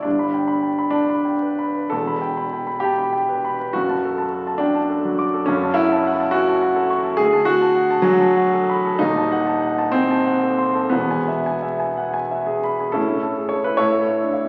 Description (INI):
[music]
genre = classical, romantic character piece for solo piano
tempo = 56-81 BPM (dotted quarters)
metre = 6/8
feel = rubato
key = D major, A major from 5.5 s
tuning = A4 = 440 Hz
[part]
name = clear grand piano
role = solo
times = 0.0-14.5 s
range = D#1 to D6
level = -20 LUFS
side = equal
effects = none
[sound]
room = wet recital hall reverb, RT60 1.4 s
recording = very old 78 rpm record, vinyl crackle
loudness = -20 LUFS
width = mono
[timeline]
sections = 0.0-13.0 A section; 13.0-14.5 B section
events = none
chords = 0.0 G; 1.9 Em; 3.7 D/F#; 5.5 F#m; 7.2 Bm7/D; 9.0 D#dim7; 10.9 E; 13.0 A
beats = | 0.05 0.93 | 1.93 2.84 | 3.75 4.61 | 5.48 6.34 | 7.20 8.04 | 9.01 9.94 | 10.95 11.98 | 12.97 13.80